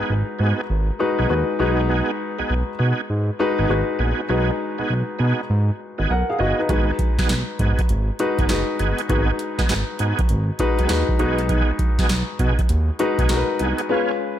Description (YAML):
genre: R&B, new jack swing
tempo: 100 BPM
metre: 4/4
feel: swing 65% on 16ths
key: unclear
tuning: A4 = 440 Hz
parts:
  - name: warm concert grand piano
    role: accompaniment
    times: 0.0-14.4 s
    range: G#3 to F#5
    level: -23 LUFS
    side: left 3 dB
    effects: none
  - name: tonewheel organ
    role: stabs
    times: 0.0-14.1 s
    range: B3 to G#4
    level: -27 LUFS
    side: right 3 dB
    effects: chorus vibrato, fast rotary speaker
  - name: smooth synth bass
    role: bass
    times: 0.0-13.7 s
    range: F#1 to B2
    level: -21 LUFS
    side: right 1 dB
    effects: none
  - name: booming analog drum machine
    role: drums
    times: 6.7-13.9 s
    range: hi-hat, kick drum, snare drum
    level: -21 LUFS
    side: right 1 dB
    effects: none
room: light reverb, digital ambience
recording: none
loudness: -18 LUFS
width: side -11 dB against mid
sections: 0.0-14.4 A section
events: none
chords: 0.0 G#m7; 1.6 B6; 6.7 G#m7; 11.2 B6; 13.9 C#7